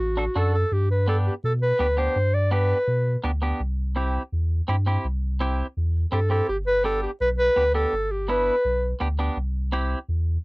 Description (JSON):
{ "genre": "latin, cumbia", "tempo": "166 BPM", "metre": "4/4", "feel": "straight", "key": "G major", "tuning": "A4 = 438 Hz", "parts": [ { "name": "warm clarinet", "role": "melody", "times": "0.0-3.2, 6.1-9.0 s", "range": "F#4 to D5", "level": "-23 LUFS", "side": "equal", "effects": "cassette tape" }, { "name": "warm sub bass", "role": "bass", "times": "0.0-10.4 s", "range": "G1 to B2", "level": "-24 LUFS", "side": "equal", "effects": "none" }, { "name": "clean electric guitar", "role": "accompaniment", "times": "0.2-10.0 s", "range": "B3 to A4", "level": "-28 LUFS", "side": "right 1 dB", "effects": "cassette tape" } ], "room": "moderate booth ambience, RT60 0.2 s", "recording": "home recording on cassette", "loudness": "-21 LUFS", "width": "side -25 dB against mid", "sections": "0.7-10.4 A section", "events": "none", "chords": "0.0 D; 0.7 G; 3.6 C; 6.5 G; 9.4 C", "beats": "0.00 0.36 | 0.72 1.08 1.44 1.80 | 2.16 2.52 2.88 3.24 | 3.60 3.96 4.32 4.68 | 5.04 5.41 5.77 6.13 | 6.49 6.85 7.21 7.57 | 7.93 8.29 8.65 9.01 | 9.37 9.73 10.09" }